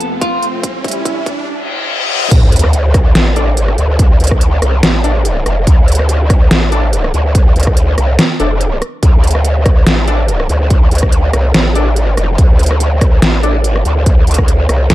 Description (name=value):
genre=heavy wobble dubstep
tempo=143 BPM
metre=4/4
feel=swing 54% on 16ths, half-time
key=D minor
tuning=A4 = 440 Hz
part: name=lush unison pad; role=sustained chords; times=0.0-1.5 s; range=C2 to F4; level=-23 LUFS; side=right 1 dB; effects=chorus, sidechain pumping
part: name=dubstep drum kit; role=drums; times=0.0-14.9 s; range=crash cymbal, hi-hat, rim click, snare drum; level=-16 LUFS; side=equal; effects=none
part: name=riser, reverse cymbal and sub drop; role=sound effects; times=0.0-4.0 s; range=none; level=-17 LUFS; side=left 1 dB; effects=none
part: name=electronic kick drum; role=drums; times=0.2-14.5 s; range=none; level=-10 LUFS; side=equal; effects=none
part: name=growl bass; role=bass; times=2.3-14.9 s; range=F1 to D2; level=-12 LUFS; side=equal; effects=chorus, overdrive
part: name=orchestra-hit-like synth stab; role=stabs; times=3.4-13.5 s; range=D4 to D5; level=-21 LUFS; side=left 3 dB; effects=built-in reverb, digital delay
part: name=snarling distorted saw bass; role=bass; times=14.9 s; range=D2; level=-8 LUFS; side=equal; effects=distortion, overdrive
room=digital ambience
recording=dark, warm production, high-pass filter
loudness=-9 LUFS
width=side -15 dB against mid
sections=0.0-2.3 A section; 2.3-14.9 B section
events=build-up 0.0-2.3; drum fill 0.0-1.5; riser 0.0-1.5; filter sweep on analog synth pad 0.0-2.3; filter sweep 0.0-2.3; reverse cymbal 1.5-2.3; drop 2.3-14.9; impact 2.3-4.0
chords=0.0 F; 0.6 C; 2.3 D5